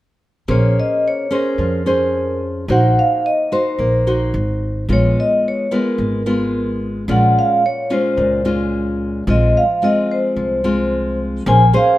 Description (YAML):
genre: bossa nova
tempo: 109 BPM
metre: 4/4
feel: straight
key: Bb minor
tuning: A4 = 440 Hz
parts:
  - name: vibraphone with medium mallets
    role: melody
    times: 0.5-12.0 s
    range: Bb4 to Ab5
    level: -18 LUFS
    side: equal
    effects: none
  - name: nylon-string guitar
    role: accompaniment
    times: 0.5-12.0 s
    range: Bb2 to C5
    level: -19 LUFS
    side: left 1 dB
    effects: none
  - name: upright bass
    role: bass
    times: 0.5-11.7 s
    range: Ab1 to F2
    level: -19 LUFS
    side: right 1 dB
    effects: none
room: light reverb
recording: minimal, uncompressed stereo recording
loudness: -14 LUFS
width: side -15 dB against mid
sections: 0.5-12.0 A section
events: none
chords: 0.5 Bbm9; 2.7 Ebm6/Bb; 4.3 Ab7; 4.9 Abm69; 7.1 Bbm9; 9.3 Fm/Bb; 11.5 Bbm9